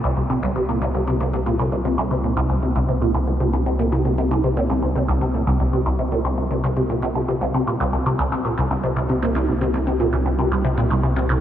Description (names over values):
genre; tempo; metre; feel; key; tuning
ambient, sequencer-driven space music; 116 BPM; 4/4; straight; unclear; A4 = 440 Hz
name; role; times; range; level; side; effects
resonant blip pluck; riff; 0.0-11.4 s; C2 to C3; -19 LUFS; equal; phaser, lush chorus, tape echo
warm sub bass; bass; 0.0-11.4 s; C2; -25 LUFS; equal; none
room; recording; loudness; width
wet cathedral reverb, RT60 5.3 s; in a vast, echoing space; -18 LUFS; side -10 dB against mid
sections
0.0-11.4 A section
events
none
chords
0.0 C5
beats
0.43 0.95 | 1.47 1.98 2.50 3.02 | 3.53 4.05 4.57 5.08 | 5.60 6.12 6.64 7.15 | 7.67 8.19 8.71 9.22 | 9.74 10.26 10.78 11.29